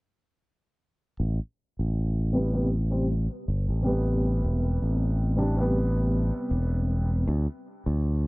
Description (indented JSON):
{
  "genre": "trip hop",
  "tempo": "79 BPM",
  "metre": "4/4",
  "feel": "swing 55% on 16ths",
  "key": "A minor",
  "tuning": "A4 = 440 Hz",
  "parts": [
    { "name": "modern bright fingered electric bass", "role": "bass", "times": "1.2-8.3 s", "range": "E1 to D2", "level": "-25 LUFS", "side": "equal", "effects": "tube saturation" },
    { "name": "felt-muted upright piano", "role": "accompaniment", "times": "2.3-7.3 s", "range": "C3 to D4", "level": "-29 LUFS", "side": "equal", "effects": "harmonic tremolo, low-pass filter, tape echo" }
  ],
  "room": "studio reverb",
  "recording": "dry, gritty hardware recording, low-pass filter",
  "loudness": "-24 LUFS",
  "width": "side -25 dB against mid",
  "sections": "1.2-8.3 A section",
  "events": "filter sweep on felt piano 1.2-8.3; filter sweep 1.2-8.3",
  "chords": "1.2 Am7; 7.3 N.C."
}